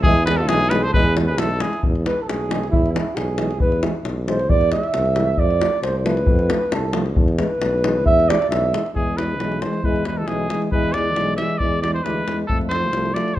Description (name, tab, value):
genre	balkan folk, Balkan brass band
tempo	135 BPM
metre	2/4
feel	straight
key	E phrygian dominant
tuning	A4 = 441 Hz
part	clear trumpet	melody	0.0-1.8, 9.0-13.4 s	G#4 to E5	-23 LUFS	equal	none
part	mellow euphonium	accompaniment	0.0-13.4 s	E3 to F3	-29 LUFS	right 5 dB	none
part	warm euphonium	accompaniment	0.0-13.4 s	G#3 to A3	-28 LUFS	left 4 dB	none
part	mellow tuba	bass	0.0-13.4 s	B1 to F2	-24 LUFS	equal	none
part	davul	percussion	0.0-13.4 s	none	-23 LUFS	left 1 dB	none
part	mellow flugelhorn	second line	0.1-8.9 s	E4 to E5	-21 LUFS	right 2 dB	none
room	moderate recital hall reverb, RT60 1.6 s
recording	close, detailed microphones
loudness	-17 LUFS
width	side -14 dB against mid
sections	0.0-1.8 A section; 1.8-8.9 B section; 8.9-13.4 C section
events	flugelhorn solo 1.8-8.9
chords	0.1 E; 5.4 F; 7.2 E; 12.5 F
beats	| 0.05 0.50 | 0.94 1.39 | 1.83 2.28 | 2.73 3.17 | 3.61 4.06 | 4.50 4.95 | 5.39 5.83 | 6.28 6.72 | 7.16 7.61 | 8.05 8.50 | 8.94 9.39 | 9.83 10.28 | 10.72 11.17 | 11.61 12.05 | 12.49 12.93 | 13.37